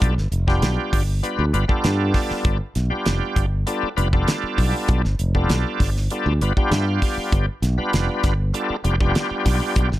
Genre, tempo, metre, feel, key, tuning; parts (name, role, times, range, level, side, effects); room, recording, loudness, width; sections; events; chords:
electric jazz fusion; 98 BPM; 4/4; straight; G mixolydian; A4 = 442 Hz
bright tonewheel organ; accompaniment; 0.0-9.9 s; G3 to F5; -24 LUFS; equal; slow rotary speaker, overdrive, chorus vibrato
modern bright fingered electric bass; bass; 0.0-10.0 s; F1 to G2; -21 LUFS; equal
damped 70s drum kit; drums; 0.0-10.0 s; hi-hat, kick drum, snare drum; -22 LUFS; equal
little or no reverb; -18 LUFS; side -15 dB against mid
0.0-10.0 A section
tonewheel organ fill 6.4-7.3
0.0 G9